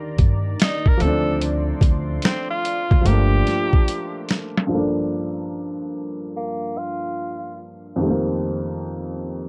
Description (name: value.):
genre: lo-fi hip hop.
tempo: 73 BPM.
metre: 4/4.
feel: swing 65% on 16ths.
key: G minor.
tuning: A4 = 440 Hz.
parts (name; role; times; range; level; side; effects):
warm upright piano; accompaniment; 0.0-9.5 s; F2 to A4; -27 LUFS; equal; cassette tape, low-pass filter.
deep dark ambient pad; sustained chords; 0.0-4.7 s; Eb3 to C6; -35 LUFS; equal; chorus, built-in reverb, low-pass filter.
upright bass; bass; 0.2-3.4 s; G1 to G2; -23 LUFS; equal; none.
boom bap sampler-style drum kit; drums; 0.2-4.7 s; hi-hat, kick drum, snare drum; -20 LUFS; equal; none.
edgy tenor saxophone; melody; 0.6-7.6 s; Bb3 to Bb4; -29 LUFS; equal; low-pass filter.
room: light reverb.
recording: dark, warm production, low-pass filter.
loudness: -22 LUFS.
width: mono.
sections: 0.0-4.7 A section; 4.7-9.5 B section.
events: drum fill 3.9-4.7.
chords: 0.0 Ebmaj7; 1.0 Dm7; 3.1 Gm9; 8.0 F9sus4.